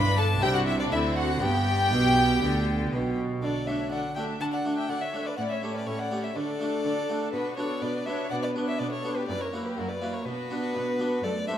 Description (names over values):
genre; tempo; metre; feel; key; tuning
classical, baroque-style concerto movement with solo episodes; 123 BPM; 4/4; straight; G major, D major from 3.4 s; A4 = 440 Hz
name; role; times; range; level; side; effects
bright studio violin section; melody; 0.0-11.6 s; D4 to B5; -38 LUFS; left 4 dB; none
clear violin; melody; 0.0-11.6 s; A#4 to B5; -31 LUFS; left 1 dB; none
rich studio violin section; second line; 0.0-11.6 s; D4 to F#5; -32 LUFS; left 3 dB; none
clear chamber viola section; accompaniment; 0.0-11.6 s; A3 to D4; -34 LUFS; right 3 dB; none
harpsichord; accompaniment; 0.0-11.6 s; F#2 to A4; -32 LUFS; equal; none
clear chamber cello section; bass; 0.0-11.6 s; F#2 to D3; -33 LUFS; right 2 dB; none
rich studio double bass section; bass; 0.0-3.4 s; G1 to D2; -30 LUFS; right 1 dB; none
room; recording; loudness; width
wet recital hall reverb, RT60 1.6 s; none; -25 LUFS; side -10 dB against mid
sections
0.0-3.4 A section; 3.4-11.6 B section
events
none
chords
0.4 C; 0.9 D7; 1.4 G; 3.4 D; 5.4 A7; 6.4 D; 7.3 Bm; 9.3 F#7; 10.3 Bm